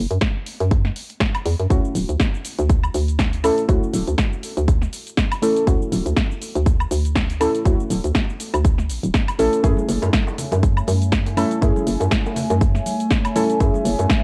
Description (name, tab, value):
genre	deep house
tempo	121 BPM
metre	4/4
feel	swing 56% on 16ths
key	unclear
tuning	A4 = 445 Hz
part	hollow knocking FM bass	bass	0.0-14.1 s	D1 to F#2	-23 LUFS	equal	tube saturation, sidechain pumping
part	house drum kit	drums	0.1-14.2 s	hi-hat, shaker, snare drum, woodblock	-28 LUFS	equal	small room ambience
part	electronic kick drum	drums	0.2-14.2 s	none	-22 LUFS	equal	small room ambience
part	deep mellow chord stab	stabs	1.7-14.2 s	A3 to A4	-24 LUFS	equal	chorus, sidechain pumping, tape echo
part	hollow soft pad	sustained chords	10.1-14.2 s	A3 to G#5	-29 LUFS	equal	chorus, sidechain pumping
part	congas and bongos	percussion	9.8-14.2 s	none	-32 LUFS	equal	none
room	digital ambience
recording	cassette tape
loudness	-20 LUFS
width	mono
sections	0.0-14.2 A section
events	none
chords	0.0 N.C.; 1.7 Dmaj9; 9.6 F#m7